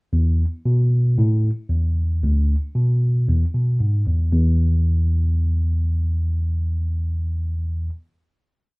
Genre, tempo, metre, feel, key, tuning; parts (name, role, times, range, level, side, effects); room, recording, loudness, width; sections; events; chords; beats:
klezmer; 114 BPM; 2/4; straight; E major; A4 = 437 Hz
mellow tine electric piano; solo; 0.1-7.9 s; D2 to B2; -18 LUFS; equal
moderate studio reverb, RT60 0.5 s; rough home demo mix; -18 LUFS; side -31 dB against mid
0.1-4.3 A section; 4.3-6.4 final note
| 0.12 0.65 | 1.17 1.70 | 2.23 2.75 | 3.28 3.81 | 4.33 4.86 | 5.39 5.91